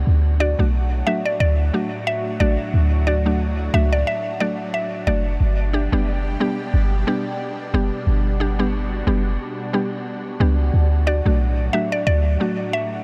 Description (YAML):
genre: dancehall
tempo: 90 BPM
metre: 4/4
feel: swing 56% on 16ths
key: D major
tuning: A4 = 441 Hz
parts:
  - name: lush unison pad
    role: sustained chords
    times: 0.0-13.0 s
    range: A2 to G4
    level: -31 LUFS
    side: equal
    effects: chorus, phaser
  - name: clean 808-style bass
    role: bass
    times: 0.0-12.4 s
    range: F#1 to D2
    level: -20 LUFS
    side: equal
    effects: none
  - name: mallet-like synth pluck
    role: melody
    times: 0.4-5.2, 11.1-12.9 s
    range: D5 to E5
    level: -27 LUFS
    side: equal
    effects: chorus, diffuse ambient delay
  - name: mallet-like synth pluck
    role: accompaniment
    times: 0.4-12.6 s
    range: F#3 to G4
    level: -28 LUFS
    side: equal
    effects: chorus
room: light reverb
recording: none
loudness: -20 LUFS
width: mono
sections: 0.1-13.0 A section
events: none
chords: 0.1 D; 5.4 G; 10.7 D